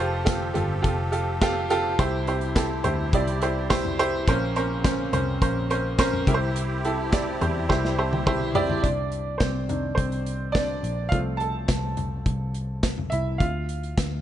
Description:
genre	piano-driven pop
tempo	105 BPM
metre	4/4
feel	straight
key	unclear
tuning	A4 = 439 Hz
part	clear upright piano	accompaniment	0.0-14.2 s	Bb2 to A5	-25 LUFS	right 2 dB	none
part	musette accordion	sustained chords	0.0-8.8 s	C3 to A4	-34 LUFS	equal	none
part	vintage muted picked electric bass	bass	0.0-14.2 s	F1 to E2	-29 LUFS	equal	none
part	modern studio drum kit	drums	0.3-14.1 s	handclaps, hi-hat, kick drum, snare drum, toms	-26 LUFS	left 1 dB	none
room	light reverb, small room reverb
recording	nothing above 10.8 kHz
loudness	-22 LUFS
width	side -11 dB against mid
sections	0.0-8.8 A section; 8.8-14.2 B section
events	drum fill 7.7-8.8; upright piano fill 7.7-8.8; upright piano solo 8.8-14.2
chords	0.0 Fadd9; 2.0 C; 4.3 Bbmadd9; 6.3 C; 8.8 Cmadd9; 11.1 F/C; 13.4 Bb/D (rootless)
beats	0.27 0.84 1.42 | 1.99 2.56 3.13 3.70 | 4.27 4.84 5.41 5.98 | 6.55 7.13 7.70 8.27 | 8.84 9.41 9.98 10.55 | 11.12 11.69 12.27 12.84 | 13.41 13.98

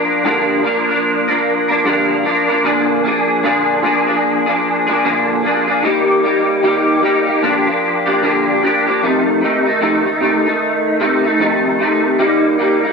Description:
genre	indie pop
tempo	75 BPM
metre	4/4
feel	swing 60% on 16ths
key	Bb major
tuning	A4 = 441 Hz
part	electric guitar through a small old amp	solo	0.0-12.9 s	F2 to Bb4	-12 LUFS	equal	ensemble chorus, warbly pitch drift
room	moderate studio reverb, RT60 0.7 s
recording	none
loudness	-13 LUFS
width	side -4 dB against mid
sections	0.0-9.0 A section; 9.0-12.9 B section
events	none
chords	0.0 Gm7; 2.6 Bb7; 5.8 Eb; 7.4 Bb6; 9.0 F7; 12.2 Eb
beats	0.25 1.04 1.84 | 2.64 3.44 4.24 5.04 | 5.83 6.63 7.43 8.23 | 9.02 9.82 10.62 11.41 | 12.21

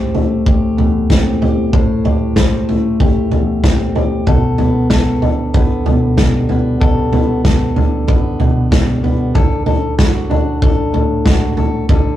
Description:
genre	indie folk with a building arrangement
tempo	94 BPM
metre	4/4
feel	straight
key	unclear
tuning	A4 = 443 Hz
part	fingerpicked plugged-in steel-string acoustic guitar	accompaniment	0.0-12.2 s	E2 to C5	-16 LUFS	left 2 dB	none
part	unplugged drum kit	drums	0.1-12.0 s	kick drum, snare drum, toms	-13 LUFS	equal	none
room	wet small room reverb, RT60 0.6 s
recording	rough rehearsal-room recording, tube saturation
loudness	-12 LUFS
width	side -12 dB against mid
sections	0.0-12.2 A section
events	none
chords	0.0 Am7; 4.3 Gadd9/B; 9.4 D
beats	0.46 1.10 | 1.73 2.37 3.00 3.64 | 4.27 4.91 5.54 6.18 | 6.81 7.45 8.08 8.72 | 9.35 9.98 10.62 11.25 | 11.89

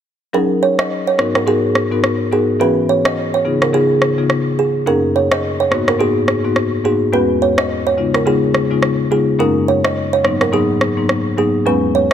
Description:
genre	afrobeats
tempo	106 BPM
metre	4/4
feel	swing 58% on 16ths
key	unclear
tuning	A4 = 439 Hz
part	marimba with soft mallets	accompaniment	0.3-12.1 s	E2 to A#4	-16 LUFS	left 3 dB	none
part	kalimba	riff	0.3-12.1 s	G#4 to D#5	-18 LUFS	right 5 dB	tape echo
part	electronic rim click	drums	0.8-12.1 s	none	-20 LUFS	equal	none
room	light reverb, small room ambience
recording	none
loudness	-13 LUFS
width	side -9 dB against mid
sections	0.3-12.1 A section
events	none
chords	0.3 F#69; 1.2 G#m7; 2.6 E6; 3.5 C#7; 4.9 F#69; 5.7 G#m7; 7.1 E6; 8.0 C#7; 9.4 F#69; 10.2 G#m7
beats	| 0.34 0.90 1.47 2.04 | 2.60 3.17 3.73 4.30 | 4.87 5.43 6.00 6.56 | 7.13 7.70 8.26 8.83 | 9.39 9.96 10.53 11.09 | 11.66

